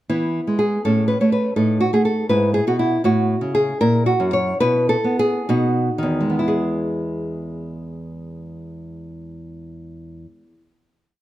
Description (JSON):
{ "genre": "classical, baroque-style dance for nylon-string guitar", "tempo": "58-83 BPM (dotted quarters)", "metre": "6/8", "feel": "rubato", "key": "E major", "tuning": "A4 = 440 Hz", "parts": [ { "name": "nylon-string guitar", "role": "solo", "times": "0.1-10.7 s", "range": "E2 to C#5", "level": "-18 LUFS", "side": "equal", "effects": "none" } ], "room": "light reverb", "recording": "close, detailed microphones", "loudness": "-17 LUFS", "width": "side -14 dB against mid", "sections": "0.1-6.5 A section; 6.5-10.4 final chord", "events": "slowing down 2.3-6.5", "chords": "0.1 E; 0.8 Aadd9; 1.6 F#m69/A; 2.3 E/G#; 3.0 F#m7/A; 3.8 F#7/A#; 4.6 Bsus4; 5.5 B; 6.5 E" }